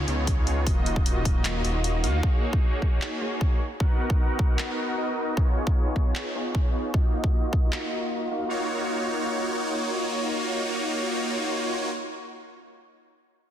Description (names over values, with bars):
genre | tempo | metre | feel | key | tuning
future bass | 153 BPM | 4/4 | half-time | Eb minor | A4 = 445 Hz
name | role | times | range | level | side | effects
supersaw chords | riff | 0.0-11.9 s | Bb3 to F#5 | -27 LUFS | equal | sidechain pumping, low-pass filter, dub echo
wide detuned saw bass | bass | 0.0-2.2 s | Eb1 to Eb2 | -26 LUFS | equal | chorus, sidechain pumping
big-room dance drum kit | drums | 0.1-7.8 s | handclaps, hi-hat | -33 LUFS | equal | none
electronic kick drum | drums | 0.3-7.6 s | none | -23 LUFS | equal | none
room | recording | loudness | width
light reverb | dense, heavily limited modern master | -23 LUFS | side -10 dB against mid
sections
0.0-8.5 A section; 8.5-11.6 B section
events
filter sweep on supersaw synth 0.0-8.5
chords
0.0 Db9; 0.7 Ebmadd9; 2.2 Gb69; 3.6 Bmaj7; 5.4 Db9; 6.9 Ebmadd9; 8.5 Ebm9